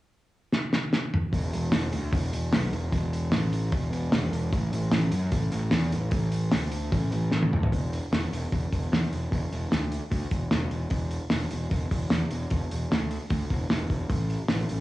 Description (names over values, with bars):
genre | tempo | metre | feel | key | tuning
garage rock duo or trio | 150 BPM | 4/4 | straight | unclear | A4 = 440 Hz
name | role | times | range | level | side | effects
cloth-damped thuddy drum kit | drums | 0.5-14.8 s | hi-hat, kick drum, snare drum, toms | -27 LUFS | equal | cassette tape
fuzz picked electric bass | bass | 1.3-14.8 s | E1 to F#2 | -28 LUFS | equal | overdrive
room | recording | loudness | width
little or no reverb | home recording on cassette, small room reverb | -25 LUFS | side -17 dB against mid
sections
0.0-1.3 A section; 1.3-7.7 B section; 7.7-14.8 C section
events
drum fill 0.5-1.3, 7.3-7.7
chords
none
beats
0.12 0.52 0.92 | 1.32 1.73 2.13 2.53 | 2.93 3.33 3.73 4.13 | 4.53 4.93 5.33 5.73 | 6.13 6.53 6.93 7.33 | 7.72 8.12 8.52 8.92 | 9.32 9.72 10.12 10.52 | 10.92 11.31 11.71 12.11 | 12.51 12.91 13.31 13.71 | 14.10 14.50